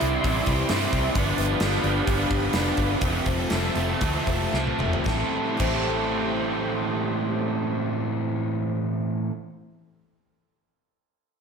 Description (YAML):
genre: rock, shoegaze and dream pop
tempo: 111-131 BPM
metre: 4/4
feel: straight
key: A minor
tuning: A4 = 441 Hz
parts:
  - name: phased analog pad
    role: sustained chords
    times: 0.0-8.7 s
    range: A3 to C6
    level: -32 LUFS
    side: equal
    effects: phaser, chorus
  - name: picked twelve-string acoustic guitar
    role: arpeggios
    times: 0.0-9.3 s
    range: E3 to A4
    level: -35 LUFS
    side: left 9 dB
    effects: analog chorus, diffuse ambient delay
  - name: overdriven electric guitar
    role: riff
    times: 0.0-9.3 s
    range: F2 to E4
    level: -29 LUFS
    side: left 7 dB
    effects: lush chorus
  - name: overdriven electric guitar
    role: riff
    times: 0.0-9.3 s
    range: F2 to A4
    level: -27 LUFS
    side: right 8 dB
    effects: reverse reverb
  - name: vintage muted fingered electric bass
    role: bass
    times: 0.0-9.3 s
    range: F1 to G2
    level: -29 LUFS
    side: equal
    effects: none
  - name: gated 80s drum kit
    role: drums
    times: 0.0-5.7 s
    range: crash cymbal, hi-hat, kick drum, snare drum, toms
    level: -28 LUFS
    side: equal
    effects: none
room: wet plate reverb, RT60 1.2 s, small room ambience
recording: dreamy mix soaked in reverb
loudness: -22 LUFS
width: side -6 dB against mid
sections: 0.0-5.1 A section; 5.1-9.4 B section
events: slowing down 1.1-5.1; drum fill 4.5-5.1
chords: 0.0 Cadd9; 1.1 G7; 3.0 Fmaj7; 5.1 Am7